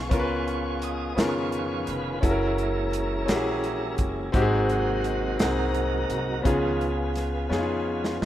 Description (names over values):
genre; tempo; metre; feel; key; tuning
slow gospel; 57 BPM (dotted quarters); 6/8; straight; unclear; A4 = 440 Hz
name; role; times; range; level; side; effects
clear grand piano; accompaniment; 0.0-8.2 s; G#2 to B4; -26 LUFS; left 2 dB; none
tonewheel organ; sustained chords; 0.0-8.2 s; B#2 to D#5; -30 LUFS; right 3 dB; fast rotary speaker
upright bass; bass; 0.0-8.2 s; E#1 to E#2; -31 LUFS; equal; none
warm soul drum kit; drums; 0.1-8.2 s; hi-hat, kick drum, snare drum; -27 LUFS; equal; none
room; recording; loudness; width
light reverb, studio reverb; rough home demo mix; -23 LUFS; side -12 dB against mid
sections
0.0-8.2 A section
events
tonewheel organ solo 0.0-8.2; drum fill 7.5-8.2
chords
0.0 C#7; 2.2 F#7; 4.3 G#7; 6.5 C#7